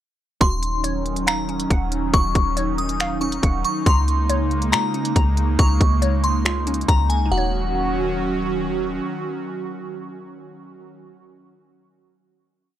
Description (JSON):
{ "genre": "hip hop, atmospheric cloud-rap", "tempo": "139 BPM", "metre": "4/4", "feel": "half-time", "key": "Eb dorian", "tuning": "A4 = 440 Hz", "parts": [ { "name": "glassy synth bell", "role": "melody", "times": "0.4-8.6 s", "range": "Gb5 to Eb6", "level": "-25 LUFS", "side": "left 1 dB", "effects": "chorus, phaser, analog delay" }, { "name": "airy breathy pad", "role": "sustained chords", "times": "0.4-10.8 s", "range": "Db3 to Gb4", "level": "-25 LUFS", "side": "right 2 dB", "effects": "chorus, sidechain pumping" }, { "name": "glassy wavetable pluck", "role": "arpeggios", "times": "0.4-10.9 s", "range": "Db4 to Bb5", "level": "-30 LUFS", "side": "left 1 dB", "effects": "chorus, analog delay" }, { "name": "soft 808-style bass", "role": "bass", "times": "0.4-9.0 s", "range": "Eb1 to Db3", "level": "-23 LUFS", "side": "equal", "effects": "none" }, { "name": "trap drum kit", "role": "drums", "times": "0.4-7.2 s", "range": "finger snaps, hi-hat, kick drum", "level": "-20 LUFS", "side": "equal", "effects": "none" } ], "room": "little or no reverb", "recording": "dry, gritty hardware recording, transformer saturation", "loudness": "-18 LUFS", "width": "side -11 dB against mid", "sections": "0.4-7.3 verse; 7.3-10.8 final chord", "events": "none", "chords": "0.4 Ebm9; 3.9 Db6; 7.3 Ebm7", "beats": "| 0.41 0.84 1.27 1.70 | 2.14 2.57 3.00 3.43 | 3.86 4.29 4.73 5.16 | 5.59 6.02 6.45 6.88 | 7.32 7.75 8.18 8.61 | 9.04 9.47 9.91 10.34" }